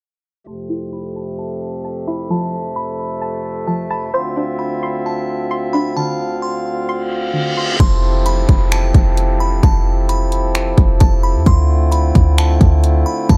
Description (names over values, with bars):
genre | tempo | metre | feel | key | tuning
hip hop, atmospheric cloud-rap | 131 BPM | 4/4 | half-time | F lydian | A4 = 440 Hz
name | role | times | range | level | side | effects
delicate synth tine bell | melody | 0.5-13.4 s | A5 to C6 | -28 LUFS | equal | chorus, phaser, low-pass filter, delay
pedal harmonium | sustained chords | 0.5-13.4 s | D2 to F5 | -24 LUFS | equal | sidechain pumping, low-pass filter
string-like resonator pluck | arpeggios | 0.5-7.8 s | D3 to C6 | -25 LUFS | equal | chorus, low-pass filter, delay
reverse cymbal and downlifter | sound effects | 7.1-11.5 s | none | -29 LUFS | equal | none
clean 808-style bass | bass | 7.8-13.4 s | F1 to F2 | -16 LUFS | equal | none
trap drum kit | drums | 7.8-13.4 s | finger snaps, hi-hat, kick drum | -16 LUFS | equal | none
room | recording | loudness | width
little or no reverb | dark, warm production | -16 LUFS | mono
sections
0.5-7.8 A section; 7.8-13.4 B section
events
filter sweep 0.5-7.8; reverse cymbal 7.1-7.8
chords
0.5 Fmaj7; 4.1 Dm7; 7.8 Fmaj7; 11.5 Dm7